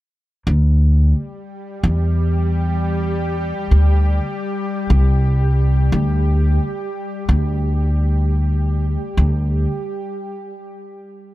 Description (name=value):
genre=trip hop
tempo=88 BPM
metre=4/4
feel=straight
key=unclear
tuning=A4 = 442 Hz
part: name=upright bass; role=bass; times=0.5-9.6 s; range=C2 to E2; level=-15 LUFS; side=equal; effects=tube saturation
part: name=bowed-like drone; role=texture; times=1.2-10.0 s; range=G3 to G4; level=-26 LUFS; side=left 1 dB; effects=built-in reverb
room=little or no reverb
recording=none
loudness=-16 LUFS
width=side -16 dB against mid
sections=0.5-11.3 A section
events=stop 10.0-11.3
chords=0.5 Dsus2; 5.9 Dsus4